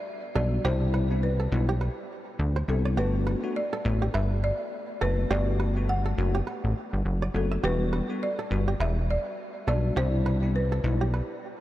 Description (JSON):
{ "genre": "afrobeats", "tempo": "103 BPM", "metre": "4/4", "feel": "swing 58% on 16ths", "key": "G major", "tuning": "A4 = 440 Hz", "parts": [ { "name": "folk marimba with medium mallets", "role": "melody", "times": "0.0-11.4 s", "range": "A4 to F#5", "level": "-33 LUFS", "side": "equal", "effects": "diffuse ambient delay" }, { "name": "bell-like tine electric piano", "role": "accompaniment", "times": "0.4-11.0 s", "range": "B2 to F#4", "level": "-33 LUFS", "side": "left 3 dB", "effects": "ensemble chorus" }, { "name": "kora", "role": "riff", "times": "0.4-11.3 s", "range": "G4 to E5", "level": "-36 LUFS", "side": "right 4 dB", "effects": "diffuse ambient delay" }, { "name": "plucky analog bass", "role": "bass", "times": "0.4-11.2 s", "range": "E1 to D2", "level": "-25 LUFS", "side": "equal", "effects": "none" } ], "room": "moderate huge ambient reverb, RT60 7.4 s", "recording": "dreamy mix soaked in reverb, lossy compression artefacts", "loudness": "-24 LUFS", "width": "side -14 dB against mid", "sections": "0.0-11.6 A section", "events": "none", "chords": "0.0 Em7 (rootless); 0.6 Cmaj9; 3.0 Gmaj7; 7.6 Em7; 10.0 Cmaj9", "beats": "0.06 | 0.65 1.23 1.81 2.39 | 2.98 3.56 4.14 4.72 | 5.30 5.89 6.47 7.05 | 7.63 8.22 8.80 9.38 | 9.96 10.55 11.13" }